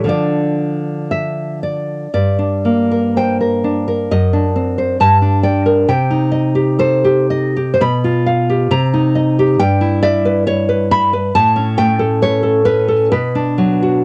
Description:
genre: romantic piece for solo classical guitar.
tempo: 56-70 BPM.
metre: 2/4.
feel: rubato.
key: G minor.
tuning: A4 = 440 Hz.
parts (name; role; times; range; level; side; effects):
nylon-string guitar; solo; 0.0-14.0 s; F#2 to B5; -15 LUFS; equal; cassette tape.
room: moderate booth ambience, RT60 0.2 s.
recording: home recording on cassette.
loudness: -15 LUFS.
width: mono.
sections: 0.0-2.1 A section; 2.1-14.0 B section.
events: none.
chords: 0.1 Dm; 2.1 Gm; 4.1 D7/F#; 5.0 Gm; 5.9 Cm; 7.8 G7/B; 8.7 Cm7; 9.6 Em/G; 11.3 A; 13.1 Bm.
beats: | 0.10 1.12 | 2.13 3.17 | 4.11 5.02 | 5.91 6.82 | 7.82 8.73 | 9.61 10.48 | 11.35 12.22 | 13.12.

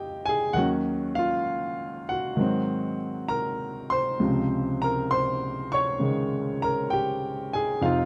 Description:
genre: solo jazz.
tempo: 66 BPM.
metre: 4/4.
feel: swing 68% on 8ths.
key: unclear.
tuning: A4 = 440 Hz.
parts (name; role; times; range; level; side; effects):
warm grand piano; solo; 0.0-8.1 s; Db2 to Db6; -27 LUFS; equal; none.
room: little or no reverb.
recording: dry, close 1970s-style studio recording.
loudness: -27 LUFS.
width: mono.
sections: 0.0-8.1 A section.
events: none.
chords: 0.0 Fm7; 0.6 Ebm7; 2.4 Ab7; 4.2 Dbmaj7.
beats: | 0.56 1.47 2.37 3.28 | 4.19 5.10 6.01 6.91 | 7.82.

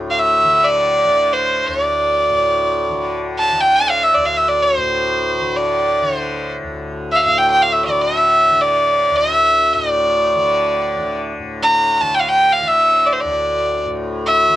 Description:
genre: indian classical, Hindustani.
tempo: free time.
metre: none.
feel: none.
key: unclear.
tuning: A4 = 438 Hz.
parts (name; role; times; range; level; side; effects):
tanpura; drone; 0.0-14.6 s; D2 to D3; -24 LUFS; left 2 dB; none.
bright violin; melody; 0.1-14.6 s; C5 to Bb5; -14 LUFS; equal; none.
room: light reverb.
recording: worn, warbling old tape, cassette tape, warbly pitch drift.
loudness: -13 LUFS.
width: side -14 dB against mid.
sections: 0.0-11.4 A section; 11.4-14.6 A section.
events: none.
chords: none.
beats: free time.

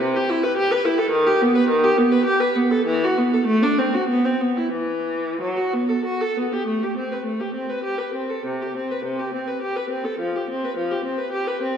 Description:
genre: classical, baroque-style suite movement for unaccompanied viola.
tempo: 88-110 BPM.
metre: 3/4.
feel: rubato.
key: E minor, A minor from 6.7 s.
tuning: A4 = 439 Hz.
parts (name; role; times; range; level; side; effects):
rich viola; solo; 0.0-11.8 s; C3 to B4; -19 LUFS; equal; none.
room: wet scoring stage reverb, RT60 1.7 s.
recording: dark, warm production.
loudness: -19 LUFS.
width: side -8 dB against mid.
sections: 0.0-6.7 A section; 6.7-11.8 A section.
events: none.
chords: none.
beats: 0.02 0.57 | 1.12 1.69 2.26 | 2.87 3.47 4.08 | 4.73 5.41 6.05 | 6.68 7.26 7.85 | 8.46 9.06 9.64 | 10.21 10.78 11.34.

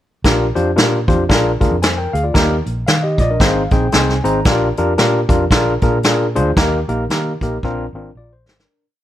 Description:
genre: uptempo 1960s-style soul.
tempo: 114 BPM.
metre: 4/4.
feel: swing 59% on 8ths.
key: Bb mixolydian.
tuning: A4 = 440 Hz.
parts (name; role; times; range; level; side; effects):
overdriven tine electric piano; accompaniment; 0.2-8.8 s; Bb3 to Bb5; -17 LUFS; left 1 dB; none.
vintage muted fingered electric bass; bass; 0.2-8.6 s; Ab1 to Eb3; -20 LUFS; equal; none.
vintage brush drum kit; drums; 0.2-8.7 s; hi-hat, kick drum, snare drum; -16 LUFS; equal; none.
room: light reverb.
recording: none.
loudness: -13 LUFS.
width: side -12 dB against mid.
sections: 0.2-8.7 A section.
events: tine electric piano fill 2.9-4.5; fade-out 6.6-8.7; drum fill 7.6-8.7.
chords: 0.2 Bb6; 1.3 Bb7; 2.3 Eb; 3.4 Ab; 4.5 Bb6; 5.5 Bb7; 6.6 Eb; 7.6 Bbadd9.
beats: | 0.24 0.77 1.30 1.82 | 2.35 2.88 3.40 3.93 | 4.46 4.99 5.51 6.04 | 6.57 7.10 7.63 8.16.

